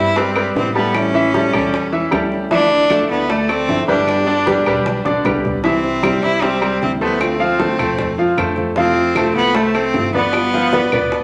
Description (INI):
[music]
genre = latin, Cuban son and guajira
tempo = 153 BPM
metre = 4/4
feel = straight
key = C major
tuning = A4 = 440 Hz
[part]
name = clear cello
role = melody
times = 0.0-11.2 s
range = A3 to E4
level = -21 LUFS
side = equal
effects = none
[part]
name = nylon-string guitar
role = accompaniment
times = 0.0-11.2 s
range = C3 to G4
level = -25 LUFS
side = equal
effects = none
[part]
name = bright grand piano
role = arpeggios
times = 0.0-11.2 s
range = D3 to F5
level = -20 LUFS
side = equal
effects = none
[part]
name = upright bass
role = bass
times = 0.0-11.2 s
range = G1 to A2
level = -31 LUFS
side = equal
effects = none
[part]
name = bongos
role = percussion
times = 0.2-11.2 s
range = none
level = -29 LUFS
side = equal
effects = none
[part]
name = congas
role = percussion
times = 0.2-11.2 s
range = none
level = -32 LUFS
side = equal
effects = none
[part]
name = claves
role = percussion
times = 0.4-11.1 s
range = none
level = -28 LUFS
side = equal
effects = none
[sound]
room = wet large studio reverb, RT60 0.9 s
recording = none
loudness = -16 LUFS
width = mono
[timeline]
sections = 0.0-11.2 A section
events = drum fill 4.9-5.6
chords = 0.0 Cmaj7; 0.9 A7; 2.5 Dmadd9; 4.1 G; 5.6 C; 7.2 Dm7; 8.8 Fmaj7; 10.3 G7